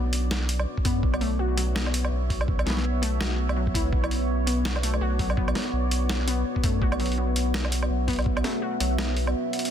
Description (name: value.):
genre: half-time drum and bass.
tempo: 166 BPM.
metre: 4/4.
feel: swing 58% on 16ths, half-time.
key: B minor.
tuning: A4 = 440 Hz.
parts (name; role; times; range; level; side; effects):
deep dark ambient pad; sustained chords; 0.0-9.7 s; B3 to E5; -31 LUFS; right 2 dB; chorus, built-in reverb, sidechain pumping.
warbly dusty pluck; arpeggios; 0.0-9.7 s; F#3 to F#4; -31 LUFS; left 5 dB; wide subtle chorus, tape echo.
saturated sub bass; bass; 0.0-9.3 s; B1 to F#2; -26 LUFS; equal; tube saturation.
boom bap sampler-style drum kit; drums; 0.1-9.7 s; hi-hat, snare drum, woodblock; -31 LUFS; right 1 dB; studio reverb.
electronic kick drum; drums; 0.8-8.3 s; none; -27 LUFS; equal; studio reverb.
room: digital ambience.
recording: dense, heavily limited modern master.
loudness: -23 LUFS.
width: side -9 dB against mid.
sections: 0.0-9.7 A section.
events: none.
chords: 0.0 Bmadd9.